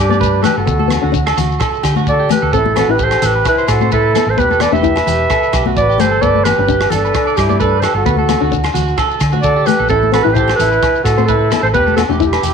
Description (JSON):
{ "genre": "highlife guitar band", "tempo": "130 BPM", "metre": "4/4", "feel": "swing 55% on 16ths", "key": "G major", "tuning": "A4 = 437 Hz", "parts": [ { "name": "mellow clarinet", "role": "melody", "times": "0.0-12.5 s", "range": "G4 to E5", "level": "-16 LUFS", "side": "right 4 dB", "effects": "none" }, { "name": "mellow trumpet", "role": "second line", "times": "0.0-12.5 s", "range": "D4 to B4", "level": "-21 LUFS", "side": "left 10 dB", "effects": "none" }, { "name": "electric guitar at the edge of break-up", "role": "arpeggios", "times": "0.0-12.5 s", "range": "F#4 to D5", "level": "-20 LUFS", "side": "right 10 dB", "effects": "analog chorus, slapback echo" }, { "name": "hollow-body short-scale fingered electric bass", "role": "bass", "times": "0.0-12.5 s", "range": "E1 to D3", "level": "-18 LUFS", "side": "equal", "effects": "none" }, { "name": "nylon-string guitar", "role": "accompaniment", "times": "0.1-12.3 s", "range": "A3 to E4", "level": "-19 LUFS", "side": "left 12 dB", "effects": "none" }, { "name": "congas", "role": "percussion", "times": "0.1-12.5 s", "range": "none", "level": "-23 LUFS", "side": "left 9 dB", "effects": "none" }, { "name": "shekere", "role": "percussion", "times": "0.1-12.5 s", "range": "none", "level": "-26 LUFS", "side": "left 7 dB", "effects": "none" }, { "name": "crunchy breakbeat drum kit", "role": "drums", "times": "0.2-12.5 s", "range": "hi-hat, kick drum, rim click", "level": "-22 LUFS", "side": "right 3 dB", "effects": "none" }, { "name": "agogo bells", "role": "percussion", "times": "0.5-12.4 s", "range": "none", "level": "-24 LUFS", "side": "left 15 dB", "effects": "none" } ], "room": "moderate echo chamber reverb, RT60 1.3 s, small room ambience", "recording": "1960s-style stereo with parts hard left and right", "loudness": "-11 LUFS", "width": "side -6 dB against mid", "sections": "0.0-12.5 A section", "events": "none", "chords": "0.0 G; 0.7 D; 2.5 Am; 4.4 Em; 6.2 G; 8.1 D; 9.9 Am; 11.7 Em" }